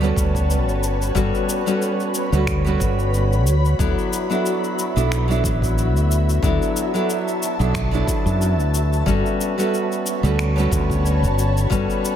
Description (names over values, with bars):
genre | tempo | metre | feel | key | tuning
sunset chillout | 91 BPM | 4/4 | swing 56% on 16ths | G lydian | A4 = 439 Hz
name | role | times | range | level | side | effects
nylon-string guitar | accompaniment | 0.0-12.2 s | F#3 to A4 | -22 LUFS | moving between left 6 dB and right 6 dB | auto-pan, analog delay
ethereal airy pad | sustained chords | 0.0-12.2 s | F#4 to B5 | -26 LUFS | left 1 dB | ensemble chorus, built-in reverb
mellow fretless electric bass | bass | 0.0-11.9 s | G1 to F#2 | -19 LUFS | equal | none
electronic shaker and finger snaps | drums | 0.0-12.2 s | none | -30 LUFS | left 3 dB | dub echo
electronic kick drum | drums | 0.2-11.9 s | none | -25 LUFS | equal | none
room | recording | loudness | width
light reverb, digital ambience | echo-heavy mix | -17 LUFS | side -10 dB against mid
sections
0.0-12.2 A section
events
none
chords
0.0 Gmaj9#11; 3.5 D69; 9.1 Gmaj9#11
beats
0.49 | 1.15 1.81 2.47 3.13 | 3.79 4.45 5.11 5.77 | 6.43 7.09 7.75 8.41 | 9.07 9.72 10.38 11.04 | 11.70